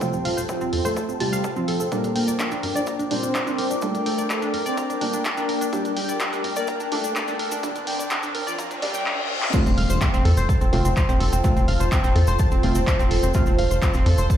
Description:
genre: melodic techno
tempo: 126 BPM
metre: 4/4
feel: straight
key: unclear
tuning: A4 = 438 Hz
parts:
  - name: soft supersaw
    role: melody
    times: 0.0-9.0 s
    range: D3 to D5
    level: -28 LUFS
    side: equal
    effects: ping-pong delay
  - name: dark analog pad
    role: sustained chords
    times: 0.0-9.0 s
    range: A4 to D6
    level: -34 LUFS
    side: right 1 dB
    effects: chorus, phaser, sidechain pumping
  - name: analog pluck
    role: arpeggios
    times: 0.0-14.4 s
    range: C4 to A6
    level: -28 LUFS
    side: right 1 dB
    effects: chorus, sidechain pumping, digital delay
  - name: synth brass stab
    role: stabs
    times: 0.0-14.4 s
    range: Bb2 to F4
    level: -30 LUFS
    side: right 1 dB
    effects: chorus, sidechain pumping, digital delay
  - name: electronic kick drum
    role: drums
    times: 0.0-14.4 s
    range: none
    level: -22 LUFS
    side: equal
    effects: high-pass filter on kick
  - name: cabasa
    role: percussion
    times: 0.0-14.4 s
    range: none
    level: -38 LUFS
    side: left 4 dB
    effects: none
  - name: ethereal airy pad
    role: texture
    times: 0.0-14.4 s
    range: D4 to A5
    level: -30 LUFS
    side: equal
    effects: ensemble chorus, built-in reverb, phaser, sidechain pumping
  - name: tight sequencer bass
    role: bass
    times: 0.1-14.3 s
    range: F1 to G2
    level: -22 LUFS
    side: equal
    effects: sidechain pumping
  - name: punchy analog drum machine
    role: drums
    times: 0.3-14.4 s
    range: crash cymbal, handclaps, hi-hat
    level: -30 LUFS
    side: equal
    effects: none
  - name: riser, reverse cymbal and impact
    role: sound effects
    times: 4.9-11.4 s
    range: none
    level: -33 LUFS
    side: left 1 dB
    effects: none
room: light reverb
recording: played on a big sound system in a bare room, large studio reverb, high-pass filter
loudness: -20 LUFS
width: side -10 dB against mid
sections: 0.0-9.5 A section; 9.5-14.4 B section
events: build-up 0.0-9.5; filter sweep on synth arpeggio sound 0.0-9.5; filter sweep on supersaw synth 0.0-9.5; filter sweep on synth stab 0.0-9.5; filter sweep 0.0-9.5; riser 4.9-9.5; reverse cymbal 8.6-9.5; drum fill 9.1-9.5; drop 9.5-14.4; impact 9.5-11.4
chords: 0.0 F; 1.9 Gm; 9.5 F

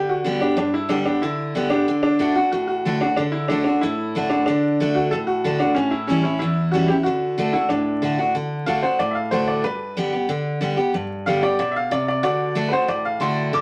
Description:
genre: rock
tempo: 185 BPM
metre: 4/4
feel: straight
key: D mixolydian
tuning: A4 = 440 Hz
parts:
  - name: bright upright piano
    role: melody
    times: 0.0-13.6 s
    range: C#4 to D6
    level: -24 LUFS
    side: equal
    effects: none
  - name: picked steel-string acoustic guitar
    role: accompaniment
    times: 0.0-13.6 s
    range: E2 to G4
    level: -24 LUFS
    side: equal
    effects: none
room: wet studio reverb, RT60 0.6 s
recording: vinyl crackle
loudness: -21 LUFS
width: mono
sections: 0.0-8.3 A section; 8.3-13.6 B section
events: upright piano solo 8.3-13.6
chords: 0.0 G; 1.9 D; 5.8 A7; 7.1 D; 9.6 G; 12.2 D

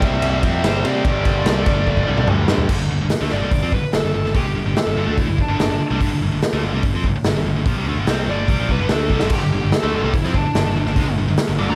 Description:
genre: hard rock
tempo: 145 BPM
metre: 4/4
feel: straight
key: unclear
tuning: A4 = 439 Hz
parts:
  - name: bluesy overdriven lead guitar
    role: melody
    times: 0.0-11.8 s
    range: D4 to D6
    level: -28 LUFS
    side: equal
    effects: distortion, tape echo
  - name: cranked stack guitar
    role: riff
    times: 0.0-2.7, 9.3-11.8 s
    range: G2 to D4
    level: -30 LUFS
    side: equal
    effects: overdrive
  - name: scooped high-gain guitar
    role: riff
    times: 0.0-11.8 s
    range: G2 to D4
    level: -25 LUFS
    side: equal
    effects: distortion
  - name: modern bright picked electric bass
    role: bass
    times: 0.0-11.8 s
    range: G1 to C3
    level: -25 LUFS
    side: equal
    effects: none
  - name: raw garage drum kit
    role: drums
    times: 0.0-11.5 s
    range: crash cymbal, hi-hat, kick drum, ride cymbal, snare drum, toms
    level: -22 LUFS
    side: equal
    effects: none
room: small room ambience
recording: none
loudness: -19 LUFS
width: mono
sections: 0.0-2.7 A section; 2.7-11.8 B section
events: drum fill 1.9-2.7, 9.1; lead electric guitar solo 2.7-11.8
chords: 0.0 C; 1.1 G5

